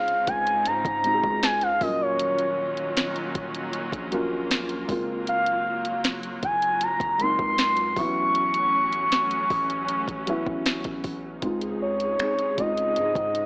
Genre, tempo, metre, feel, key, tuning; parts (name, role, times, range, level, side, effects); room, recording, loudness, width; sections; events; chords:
contemporary R&B; 78 BPM; 4/4; straight; Db major; A4 = 442 Hz
gliding portamento lead; melody; 0.0-13.5 s; Db5 to C#6; -23 LUFS; equal; chorus
felt-muted upright piano; accompaniment; 0.0-13.5 s; F3 to Ab4; -31 LUFS; equal
warm studio string section; sustained chords; 0.0-13.5 s; C3 to Ab4; -33 LUFS; equal; sidechain pumping
smooth R&B drum kit; drums; 0.1-13.5 s; finger snaps, hi-hat, kick drum, snare drum; -28 LUFS; equal
long sustained 808-style bass; bass; 0.3-13.5 s; Eb1 to Ab2; -37 LUFS; equal
light reverb, digital ambience; dry, gritty hardware recording, AM radio sound; -22 LUFS; side -35 dB against mid
0.0-11.4 A section; 11.4-13.5 B section
0.0 Dbmaj9; 1.8 Ebm9; 4.9 Gbmaj9#11; 8.0 A69; 11.4 Dbmaj9